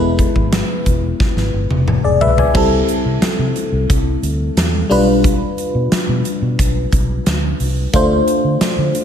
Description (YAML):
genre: 1980s-style pop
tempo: 89 BPM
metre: 4/4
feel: straight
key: unclear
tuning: A4 = 440 Hz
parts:
  - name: FM electric piano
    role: accompaniment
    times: 0.0-9.0 s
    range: G3 to G#5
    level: -17 LUFS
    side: left 2 dB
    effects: chorus, phaser
  - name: vintage muted fingered electric bass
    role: bass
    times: 0.0-8.9 s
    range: E1 to D3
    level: -19 LUFS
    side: equal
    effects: none
  - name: huge arena drum kit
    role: drums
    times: 0.2-9.0 s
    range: crash cymbal, hi-hat, kick drum, snare drum, toms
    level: -18 LUFS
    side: equal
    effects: none
room: moderate plate reverb, RT60 1.9 s, studio reverb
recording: dreamy mix soaked in reverb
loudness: -13 LUFS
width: side -8 dB against mid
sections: 0.0-2.5 A section; 2.5-9.0 B section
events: drum fill 1.2-2.5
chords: 0.0 E; 2.5 C6; 4.9 G7/B; 7.9 Dm7